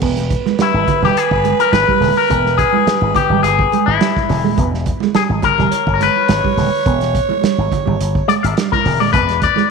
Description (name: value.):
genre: funk.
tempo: 105 BPM.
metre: 4/4.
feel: straight.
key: E mixolydian.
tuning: A4 = 440 Hz.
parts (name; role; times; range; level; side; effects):
growling tenor saxophone; second line; 0.0-8.8 s; B4 to C#5; -20 LUFS; right 7 dB; none.
mellow electric guitar; riff; 0.0-9.7 s; G3 to B3; -21 LUFS; right 12 dB; analog chorus.
slap bass with an envelope filter; bass; 0.0-9.5 s; D#1 to G#1; -19 LUFS; left 1 dB; none.
warm soul drum kit; drums; 0.0-9.6 s; crash cymbal, hi-hat, kick drum, snare drum; -21 LUFS; right 3 dB; none.
congas; percussion; 0.3-9.7 s; none; -25 LUFS; right 10 dB; none.
electric guitar with an envelope filter; accompaniment; 0.6-9.7 s; E4 to E5; -16 LUFS; left 13 dB; spring reverb.
room: moderate echo chamber reverb, RT60 2.4 s.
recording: 1960s-style stereo with parts hard left and right.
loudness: -12 LUFS.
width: side -4 dB against mid.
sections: 0.0-9.7 A section.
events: clean electric guitar solo 0.0-9.7.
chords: 0.0 E6.